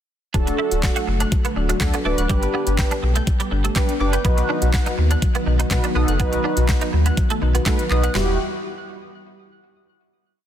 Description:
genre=dance-pop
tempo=123 BPM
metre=4/4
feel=straight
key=E minor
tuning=A4 = 436 Hz
part: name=mellow synth brass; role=accompaniment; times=0.3-8.4 s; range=D4 to B4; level=-25 LUFS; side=right 1 dB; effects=chorus, phaser, sidechain pumping
part: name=ensemble organ-string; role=sustained chords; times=0.3-8.4 s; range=D3 to B4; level=-28 LUFS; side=equal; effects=ensemble chorus, sidechain pumping
part: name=soft round pluck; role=arpeggios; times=0.3-8.4 s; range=F#3 to G6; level=-30 LUFS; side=left 3 dB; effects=chorus, sidechain pumping, ping-pong delay
part: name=twelve-string electric guitar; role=riff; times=0.3-8.3 s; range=G3 to F#4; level=-28 LUFS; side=right 6 dB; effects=ensemble chorus
part: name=sub bass with octave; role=bass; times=0.3-8.4 s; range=D1 to B2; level=-20 LUFS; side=equal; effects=sidechain pumping
part: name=pop drum kit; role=drums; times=0.3-8.3 s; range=handclaps, hi-hat, kick drum, snare drum, toms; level=-22 LUFS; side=equal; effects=none
room=light reverb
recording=dense, heavily limited modern master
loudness=-17 LUFS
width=side -10 dB against mid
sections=0.3-8.1 pre-chorus; 8.1-10.1 final chord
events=none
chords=0.3 D; 2.3 G; 4.2 B; 8.1 Emadd9

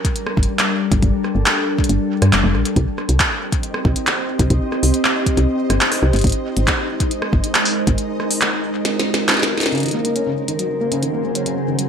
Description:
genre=IDM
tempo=138 BPM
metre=4/4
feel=straight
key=unclear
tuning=A4 = 439 Hz
part: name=glassy FM pad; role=sustained chords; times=0.0-11.9 s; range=Db3 to Eb5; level=-22 LUFS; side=left 1 dB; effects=ensemble chorus, built-in reverb, sidechain pumping
part: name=electronic kick drum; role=drums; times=0.0-8.0 s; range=none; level=-20 LUFS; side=equal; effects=none
part: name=glitchy drum kit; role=drums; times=0.0-11.9 s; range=handclaps, hi-hat, rim click, snare drum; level=-20 LUFS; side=equal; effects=gated reverb, ping-pong delay
part: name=woody FM bass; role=bass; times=0.4-8.0 s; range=F1 to G2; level=-17 LUFS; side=equal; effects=none
part: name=flickering grainy texture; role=texture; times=3.6-11.9 s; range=C4 to Eb5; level=-30 LUFS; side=left 1 dB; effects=built-in reverb
part: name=felt-muted upright piano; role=arpeggios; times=9.7-11.8 s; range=Db3 to Db4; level=-22 LUFS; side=equal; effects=low-pass filter, digital delay
room=wet plate reverb, RT60 1.6 s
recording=bright 1980s-style digital production, faint mains hum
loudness=-16 LUFS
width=side -7 dB against mid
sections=0.0-9.7 A section; 9.7-11.9 B section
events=kick drops out 8.0-9.7; drum fill 8.9-9.7; band accent 9.7; filter sweep on felt piano 9.7-11.9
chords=0.0 Gm; 2.8 Cm7; 6.2 Ab; 9.7 Gb6

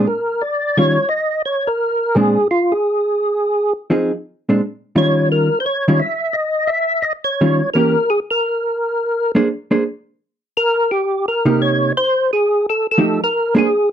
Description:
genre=jazz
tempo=172 BPM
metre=4/4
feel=swing 64% on 8ths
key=unclear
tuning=A4 = 439 Hz
part: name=percussive tonewheel organ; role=melody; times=0.0-13.9 s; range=F4 to E5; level=-16 LUFS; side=equal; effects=slow rotary speaker, chorus vibrato
part: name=vintage hollow-body jazz guitar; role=accompaniment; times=0.0-13.7 s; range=Bb2 to C5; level=-15 LUFS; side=right 1 dB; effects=none
room=moderate studio reverb, RT60 0.5 s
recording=dry, close 1970s-style studio recording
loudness=-15 LUFS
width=side -9 dB against mid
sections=0.0-13.9 A section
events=none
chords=0.0 Bb7; 0.8 Eb9; 2.2 Bb9; 3.6 Fm7; 4.3 Bb9; 5.0 Eb9; 7.7 Edim7; 9.1 Bb9; 10.5 Cm7; 11.9 F9; 13.3 Bb9

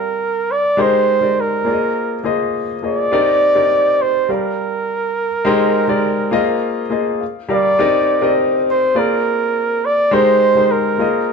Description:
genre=soul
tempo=103 BPM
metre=4/4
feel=straight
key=C minor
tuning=A4 = 438 Hz
part: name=warm flugelhorn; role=melody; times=0.0-11.3 s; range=Bb4 to D5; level=-16 LUFS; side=right 2 dB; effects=none
part: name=warm grand piano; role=accompaniment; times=0.0-11.3 s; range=G3 to Bb5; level=-17 LUFS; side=left 3 dB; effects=none
room=moderate studio reverb, RT60 0.9 s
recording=band playing live in one room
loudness=-14 LUFS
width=side -5 dB against mid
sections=0.0-7.8 A section; 7.8-11.3 A section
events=grand piano fill 6.9-7.8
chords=0.0 Gm7; 0.8 Abmaj7; 1.7 Bb7sus4; 3.1 Cm7; 4.3 Gm7; 5.5 Abmaj7; 6.3 Bb7sus4; 7.2 Gm7; 7.8 Cm7; 9.0 Bb7; 10.1 Abmaj7

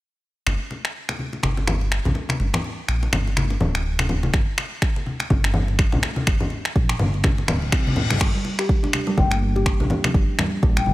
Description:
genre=afro house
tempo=124 BPM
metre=4/4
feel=swing 57% on 16ths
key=G minor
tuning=A4 = 439 Hz
part: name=smooth synth bass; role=bass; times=0.5-10.9 s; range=D1 to C2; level=-24 LUFS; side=equal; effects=sidechain pumping
part: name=deep house drum kit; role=drums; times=0.5-10.8 s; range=crash cymbal, finger snaps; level=-26 LUFS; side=equal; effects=overdrive
part: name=congas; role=percussion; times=0.5-10.9 s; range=none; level=-25 LUFS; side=left 1 dB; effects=none
part: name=electronic kick drum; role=drums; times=4.3-10.7 s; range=none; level=-20 LUFS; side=equal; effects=overdrive
part: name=reverse cymbal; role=sound effects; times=7.5-8.2 s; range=none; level=-31 LUFS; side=left 5 dB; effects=none
part: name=kalimba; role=arpeggios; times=8.3-10.9 s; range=D3 to G4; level=-25 LUFS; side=right 1 dB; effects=sidechain pumping, digital delay
part: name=mellow bansuri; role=melody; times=9.2-10.9 s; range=G5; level=-27 LUFS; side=left 6 dB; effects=vintage 12-bit sampler grit, digital delay
room=little or no reverb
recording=none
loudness=-19 LUFS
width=side -17 dB against mid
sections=0.5-8.2 A section; 8.2-10.9 B section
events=filter sweep on analog synth bass 0.5-8.2; reverse cymbal 7.5-8.2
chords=0.5 Gm

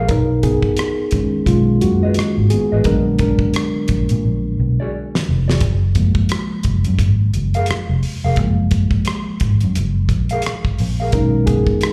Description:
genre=R&B, neo-soul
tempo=87 BPM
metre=4/4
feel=swing 59% on 16ths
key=unclear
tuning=A4 = 440 Hz
part: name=mellow electric guitar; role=second line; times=0.0-11.1 s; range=F#4 to E#5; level=-28 LUFS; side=equal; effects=slapback echo
part: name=mellow reed electric piano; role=accompaniment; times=0.0-11.9 s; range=D3 to A#4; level=-22 LUFS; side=equal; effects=none
part: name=vintage muted fingered electric bass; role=bass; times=0.0-11.7 s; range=E#1 to A#2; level=-19 LUFS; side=equal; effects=none
part: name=damped 70s drum kit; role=drums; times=0.1-11.9 s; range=hi-hat, kick drum, rim click, snare drum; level=-22 LUFS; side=equal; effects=none
room=light reverb, studio reverb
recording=live gig heard through the venue's PA, club reverb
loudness=-17 LUFS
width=mono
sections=0.0-11.9 A section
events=reed electric piano solo 0.0-11.9; drum fill 4.2-5.6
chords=0.1 B6; 2.9 A#7b9b13; 5.6 F#maj9; 11.1 B6

